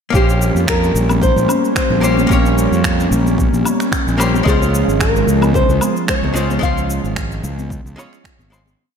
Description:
sunset chillout; 111 BPM; 4/4; swing 54% on 16ths; Bb dorian; A4 = 440 Hz
nylon-string guitar; melody; 0.1-7.4 s; G4 to F5; -20 LUFS; left 1 dB; vintage 12-bit sampler grit, diffuse ambient delay
archtop guitar, miked and amplified; accompaniment; 0.1-8.6 s; Ab3 to Db5; -22 LUFS; moving between left 4 dB and right 4 dB; auto-pan, diffuse ambient delay
airy breathy pad; sustained chords; 0.5-8.7 s; F3 to Db4; -20 LUFS; right 1 dB; chorus
fuzz fingered electric bass; bass; 0.1-8.7 s; Ab1 to F2; -18 LUFS; equal; overdrive
electronic kick drum; drums; 0.1-8.4 s; -19 LUFS; equal; small room ambience
electronic shaker, finger snaps and woodblock; drums; 0.1-8.8 s; -24 LUFS; right 1 dB; small room ambience
congas; percussion; 1.0-8.8 s; -27 LUFS; left 5 dB
moderate lush hall reverb, RT60 1.8 s; dreamy mix soaked in reverb; -13 LUFS; side -7 dB against mid
0.1-8.8 groove
fade-out 5.9-8.8
0.1 Bbm69; 4.5 Dbmaj7

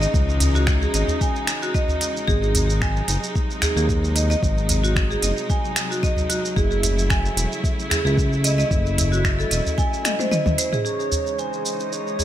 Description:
organic downtempo; 112 BPM; 4/4; swing 54% on 16ths; A4 = 438 Hz
clear symphonic string section; sustained chords; 0.0-12.2 s; B#2 to E4; -28 LUFS; left 2 dB; sidechain pumping, low-pass filter
marimba with hard mallets; arpeggios; 0.0-12.2 s; F#4 to G#5; -26 LUFS; right 2 dB; low-pass filter, digital delay
smooth synth bass; bass; 0.0-9.6 s; E1 to D#2; -21 LUFS; equal; sidechain pumping
organic electronic drum kit; drums; 0.0-12.2 s; finger snaps, hi-hat, shaker, toms; -26 LUFS; right 1 dB
electronic kick drum; drums; 0.1-9.9 s; -23 LUFS; equal
udu; percussion; 0.4-12.2 s; -26 LUFS; equal
breathy flute-like synth lead; melody; 10.8-12.2 s; B#4 to C#5; -27 LUFS; right 3 dB; wide subtle chorus
drifting glass-harmonics texture; texture; 11.3-12.2 s; G#3 to G#4; -34 LUFS; right 2 dB; chorus, built-in reverb
light reverb; -19 LUFS; side -12 dB against mid
0.0-10.9 A section; 10.9-12.2 B section
drum fill 10.0-10.9; filter sweep on string section 10.9-12.2
0.0 C#madd9; 2.3 G#7; 6.6 F#m7; 10.9 C#madd9

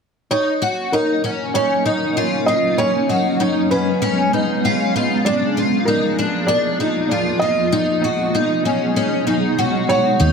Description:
dream pop; 97 BPM; 4/4; straight; Eb minor; A4 = 440 Hz
felt-muted upright piano; melody; 0.3-10.3 s; Bb4 to Eb5; -21 LUFS; right 2 dB; dub echo
granular cloud pad; sustained chords; 0.8-10.3 s; Cb3 to Bb4; -20 LUFS; right 1 dB; built-in reverb
picked twelve-string acoustic guitar; arpeggios; 0.3-10.3 s; Db4 to Gb4; -20 LUFS; left 2 dB; ensemble chorus, dub echo
hollow-body short-scale fingered electric bass; bass; 10.2-10.3 s; Eb2; -14 LUFS; equal
wet spring reverb, RT60 1.2 s, studio reverb; echo-heavy mix; -16 LUFS; side -5 dB against mid
0.3-10.2 A section
0.3 Ebm7; 2.8 Db7sus4; 5.3 Bb7b9; 7.7 Abm7/Cb

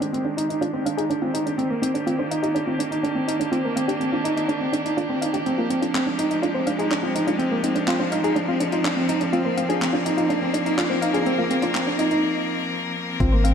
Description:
piano and strings electronica; 124 BPM; 4/4; straight; F dorian; A4 = 440 Hz
bright string quartet; sustained chords; 0.0-13.5 s; Eb3 to Bb4; -27 LUFS; left 2 dB; low-pass filter
felt-muted upright piano; riff; 0.0-13.5 s; Bb3 to Eb4; -23 LUFS; right 2 dB; ping-pong delay
deep house drum kit; drums; 0.0-13.5 s; handclaps, hi-hat; -32 LUFS; left 1 dB; overdrive
soft round pluck; arpeggios; 0.4-13.5 s; Eb4 to F5; -29 LUFS; left 3 dB; chorus, sidechain pumping, ping-pong delay
round analog bass; bass; 13.2-13.5 s; Ab1; -19 LUFS; left 1 dB; sidechain pumping
electronic kick drum; drums; 13.2-13.3 s; -22 LUFS; left 1 dB
wet lush hall reverb, RT60 2.1 s; -20 LUFS; side -7 dB against mid
0.0-13.2 A section
build-up 0.0-13.2; filter sweep on string quartet 0.0-13.2; filter sweep on synth arpeggio sound 0.0-13.2; break 12.2-13.2
0.0 Abmaj7; 1.6 Ebmaj7; 5.5 Fmadd9

